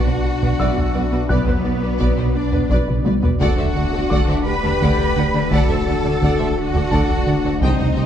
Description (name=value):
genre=cinematic, hybrid orchestral and electronic film score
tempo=57 BPM (dotted quarters)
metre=6/8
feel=straight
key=unclear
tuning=A4 = 440 Hz
part: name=warm symphonic violin section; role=melody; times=0.0-8.1 s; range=B4 to B5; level=-30 LUFS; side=left 3 dB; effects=none
part: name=warm symphonic violin section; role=second line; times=0.0-8.0 s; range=A4 to G5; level=-29 LUFS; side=left 2 dB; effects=none
part: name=clear symphonic viola section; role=accompaniment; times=0.0-8.0 s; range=A4 to Eb5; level=-31 LUFS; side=right 2 dB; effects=none
part: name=glassy FM pad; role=sustained chords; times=0.0-8.1 s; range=D3 to D5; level=-29 LUFS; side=left 2 dB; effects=none
part: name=mellow French horn section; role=sustained chords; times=0.0-8.1 s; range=F#3 to G4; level=-26 LUFS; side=left 6 dB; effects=none
part: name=rich symphonic cello section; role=bass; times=0.0-8.1 s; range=B3 to B4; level=-25 LUFS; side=right 3 dB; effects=none
part: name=sub bass with octave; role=bass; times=0.0-8.1 s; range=D1 to C2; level=-26 LUFS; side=equal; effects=none
part: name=felt-muted upright piano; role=texture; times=0.0-8.1 s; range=D5 to F#6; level=-32 LUFS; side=left 1 dB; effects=tape echo
part: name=harp-like synth pluck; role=arpeggios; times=0.1-8.1 s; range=C3 to B4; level=-28 LUFS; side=left 2 dB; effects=none
part: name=plucky analog bass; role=riff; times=0.1-8.1 s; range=C2 to B3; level=-26 LUFS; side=right 2 dB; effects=none
part: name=warm symphonic double bass section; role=bass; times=0.1-8.0 s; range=B1 to D2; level=-27 LUFS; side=right 3 dB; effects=none
part: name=taiko ensemble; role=drums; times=0.4-8.1 s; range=none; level=-22 LUFS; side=equal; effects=none
part: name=dark tuba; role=bass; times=0.6-8.0 s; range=B1 to D2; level=-26 LUFS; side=right 2 dB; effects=none
room=moderate concert hall reverb, RT60 2.1 s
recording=dark, warm production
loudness=-16 LUFS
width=side -9 dB against mid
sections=0.0-8.1 A section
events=drum fill 2.9-3.4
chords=0.0 Bm; 3.4 D